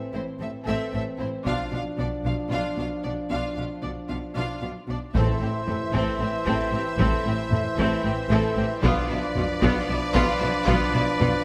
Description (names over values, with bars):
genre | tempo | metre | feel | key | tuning
cinematic, epic orchestral film score | 228 BPM (eighths) | 7/8 | straight | A minor | A4 = 440 Hz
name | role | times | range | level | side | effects
warm French horn section | sustained chords | 0.0-11.4 s | E3 to E4 | -34 LUFS | equal | none
clear symphonic violin section | melody | 0.1-11.4 s | C5 to F5 | -36 LUFS | equal | none
clear symphonic violin section | second line | 0.1-11.3 s | D4 to A4 | -35 LUFS | equal | none
rich symphonic viola section | accompaniment | 0.1-11.3 s | B3 to D4 | -35 LUFS | equal | none
rich symphonic cello section | bass | 0.1-11.3 s | A2 to B2 | -32 LUFS | equal | none
rich symphonic double bass section | bass | 0.1-11.3 s | A1 to B1 | -33 LUFS | equal | none
taiko ensemble | drums | 1.5-11.4 s | none | -31 LUFS | equal | none
bright trumpet section | stabs | 5.2-11.4 s | B4 to C5 | -32 LUFS | equal | none
timpani | percussion | 5.2-5.9 s | A2 | -33 LUFS | equal | none
room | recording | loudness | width
moderate scoring stage reverb, RT60 1.6 s | none | -25 LUFS | mono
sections
0.0-5.1 A section; 5.1-11.4 B section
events
none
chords
0.0 Am; 1.5 Bdim; 5.1 Am; 8.8 Bdim